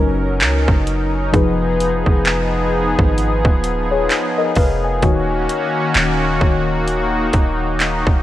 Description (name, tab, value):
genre	contemporary R&B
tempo	65 BPM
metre	4/4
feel	swing 58% on 16ths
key	Eb minor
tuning	A4 = 440 Hz
part	muted felt-like synth keys	accompaniment	0.0-8.2 s	Eb3 to Ab5	-20 LUFS	left 3 dB	chorus
part	warm analog pad	sustained chords	0.0-8.2 s	Eb3 to Bb4	-20 LUFS	equal	chorus, tremolo, sidechain pumping
part	warm 808-style bass	bass	0.0-8.2 s	Eb1 to Db2	-21 LUFS	equal	none
part	trap drum kit	drums	0.4-8.2 s	handclaps, hi-hat, kick drum	-17 LUFS	equal	none
room	light reverb, digital ambience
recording	worn, warbling old tape, cassette tape, warbly pitch drift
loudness	-14 LUFS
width	side -14 dB against mid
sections	0.0-8.2 A section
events	none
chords	0.0 Gb6; 1.3 Fm7b5; 5.0 Ebm7